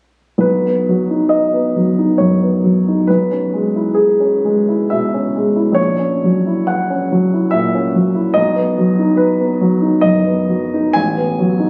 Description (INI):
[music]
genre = classical, romantic character piece for solo piano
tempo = 68 BPM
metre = 3/4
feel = uneven beats, rubato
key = B major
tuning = A4 = 440 Hz
[part]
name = warm grand piano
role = solo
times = 0.4-11.7 s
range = A1 to G#5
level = -15 LUFS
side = equal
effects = none
[sound]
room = wet recital hall reverb, RT60 1.7 s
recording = recorded on a phone in the room, club reverb, compression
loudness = -15 LUFS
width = mono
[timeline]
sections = 0.4-11.7 A section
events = none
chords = 0.4 B; 3.1 C#m7/B; 5.8 F#7/A#; 8.4 B; 11.0 B7/A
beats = | 0.43 1.32 2.20 | 3.08 3.96 4.91 | 5.78 6.70 7.54 | 8.37 9.21 10.05 | 10.96